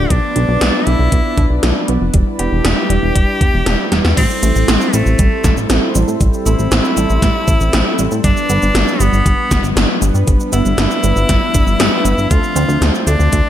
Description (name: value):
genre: synthwave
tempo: 118 BPM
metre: 4/4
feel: straight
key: A minor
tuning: A4 = 439 Hz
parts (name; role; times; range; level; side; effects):
- bright tenor saxophone; melody; 0.0-13.5 s; A3 to G4; -20 LUFS; left 1 dB; ping-pong delay, shimmer reverb
- chorused pulse-width pad; sustained chords; 0.0-13.5 s; F3 to D5; -20 LUFS; left 1 dB; sidechain pumping, shimmer reverb
- wide unison pluck; arpeggios; 0.0-13.5 s; G3 to F4; -24 LUFS; right 4 dB; ping-pong delay, shimmer reverb
- chorused synth bass; bass; 0.0-13.4 s; E1 to A2; -15 LUFS; equal; none
- 80s electronic pad drums; drums; 0.1-13.4 s; crash cymbal, hi-hat, shaker, snare drum; -18 LUFS; equal; overdrive, gated reverb
- electronic kick drum; drums; 0.1-13.4 s; none; -15 LUFS; equal; none
room: light reverb, digital ambience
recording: none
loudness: -12 LUFS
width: side -11 dB against mid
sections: 0.0-4.2 A section; 4.2-13.5 B section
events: drum fill 3.9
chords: 0.1 Bdim; 2.1 Em7; 4.2 Am7; 8.2 G7; 12.3 Dm7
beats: | 0.10 0.61 1.12 1.63 | 2.14 2.65 3.15 3.66 | 4.17 4.68 5.19 5.70 | 6.21 6.71 7.22 7.73 | 8.24 8.75 9.26 9.77 | 10.27 10.78 11.29 11.80 | 12.31 12.82 13.32